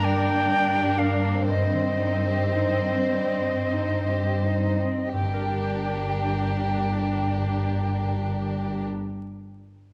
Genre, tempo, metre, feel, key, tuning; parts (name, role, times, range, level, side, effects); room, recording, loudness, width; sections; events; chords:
classical; 27-45 BPM (dotted quarters); 6/8; rubato; G minor; A4 = 440 Hz
rich chamber violin section; melody; 0.0-8.9 s; Bb4 to C5; -39 LUFS; equal
bright concert flute; second line; 0.0-8.9 s; Eb5 to G5; -30 LUFS; equal
rich chamber violin section; second line; 0.0-8.8 s; G3 to G4; -35 LUFS; equal
rich studio viola section; accompaniment; 0.0-8.9 s; C4 to D4; -34 LUFS; equal
concert harp; arpeggios; 0.0-9.1 s; G2 to Eb5; -35 LUFS; equal
rich chamber cello section; bass; 0.0-8.9 s; G2; -30 LUFS; equal
warm chamber double bass section; bass; 5.1-8.9 s; G1; -31 LUFS; equal
wet recital hall reverb, RT60 1.6 s; vinyl crackle; -25 LUFS; mono
0.0-5.1 A section; 5.1-8.7 B section
slowing down 0.0-5.1
0.0 Gm; 1.5 Cm/G; 5.1 Gm